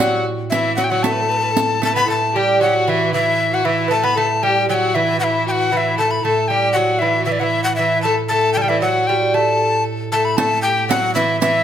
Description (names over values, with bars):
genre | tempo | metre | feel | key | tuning
medieval dance | 116 BPM | 2/4 | straight | unclear | A4 = 440 Hz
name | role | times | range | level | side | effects
breathy tenor recorder | melody | 0.0-11.6 s | D5 to B5 | -18 LUFS | left 3 dB | none
lute | second line | 0.0-11.6 s | E3 to B3 | -22 LUFS | right 4 dB | none
rich fiddle | second line | 0.0-11.6 s | E4 to B4 | -23 LUFS | left 4 dB | none
pipe organ, stopped flute | drone | 0.0-11.6 s | A2 | -26 LUFS | right 6 dB | none
riq | percussion | 0.0-2.1, 10.4-11.6 s | none | -24 LUFS | right 5 dB | none
room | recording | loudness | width
wet recital hall reverb, RT60 1.4 s | none | -15 LUFS | side -9 dB against mid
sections
0.0-2.1 A section; 2.1-10.4 B section; 10.4-11.6 B section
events
none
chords
none